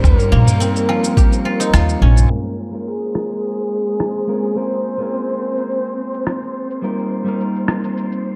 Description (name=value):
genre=organic downtempo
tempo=106 BPM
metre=4/4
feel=straight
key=Bb dorian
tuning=A4 = 440 Hz
part: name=breathy flute-like synth lead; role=melody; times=0.0-6.5 s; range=Ab4 to C5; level=-26 LUFS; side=equal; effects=analog chorus, dub echo
part: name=clean electric guitar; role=accompaniment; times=0.0-8.4 s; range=G3 to Bb4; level=-26 LUFS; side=equal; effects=spring reverb, sidechain pumping, dub echo
part: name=guzheng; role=arpeggios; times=0.0-4.9 s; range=F3 to G4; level=-26 LUFS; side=equal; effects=tape echo
part: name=upright bass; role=bass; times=0.0-2.2 s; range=Bb1 to Eb2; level=-15 LUFS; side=equal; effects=sidechain pumping
part: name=electronic kick drum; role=drums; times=0.0-1.3 s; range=none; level=-15 LUFS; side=equal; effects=overdrive, small room ambience
part: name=electronic woodblock, shaker and rim click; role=drums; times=0.0-8.2 s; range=none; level=-27 LUFS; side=equal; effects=overdrive, low-pass filter on perc, small room ambience, low-pass filter on snare
part: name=wind-like tuned noise texture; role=texture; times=0.0-8.4 s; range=C4 to Db7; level=-33 LUFS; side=equal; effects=built-in reverb
part: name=tabla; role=percussion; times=0.2-2.3 s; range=none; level=-26 LUFS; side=equal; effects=none
room=light reverb, small room reverb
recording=echo-heavy mix, low-pass filter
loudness=-18 LUFS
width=mono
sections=0.0-2.3 A section; 2.3-8.4 B section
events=filter sweep 2.3-8.4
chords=0.0 Ebadd9; 2.3 Bbm7; 6.8 Ebadd9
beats=| 0.04 0.60 1.17 1.74 | 2.30 2.87 3.44 4.00 | 4.57 5.13 5.70 6.27 | 6.83 7.40 7.96